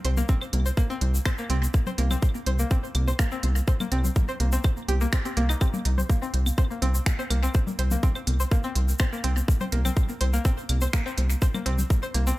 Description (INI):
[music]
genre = minimal techno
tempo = 124 BPM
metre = 4/4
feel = straight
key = unclear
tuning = A4 = 440 Hz
[part]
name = string-like resonator pluck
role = riff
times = 0.0-12.3 s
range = Bb3 to C5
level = -31 LUFS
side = equal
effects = chorus, sidechain pumping, tape echo
[part]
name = rubbery square bass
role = bass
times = 0.0-12.3 s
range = C2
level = -23 LUFS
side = equal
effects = sidechain pumping
[part]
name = garage drum kit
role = drums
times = 0.0-12.2 s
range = finger snaps, hi-hat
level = -33 LUFS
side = right 1 dB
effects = tape echo
[part]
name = congas and claves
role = percussion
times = 0.2-12.4 s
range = none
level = -35 LUFS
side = left 3 dB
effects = tape echo
[part]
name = egg shaker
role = percussion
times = 0.2-12.4 s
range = none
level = -38 LUFS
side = left 2 dB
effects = tape echo
[part]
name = electronic kick drum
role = drums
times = 0.3-12.0 s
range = none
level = -23 LUFS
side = equal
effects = none
[sound]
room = light reverb, digital ambience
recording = echo-heavy mix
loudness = -22 LUFS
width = side -18 dB against mid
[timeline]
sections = 0.0-12.4 A section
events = none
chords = 0.0 C7(no3)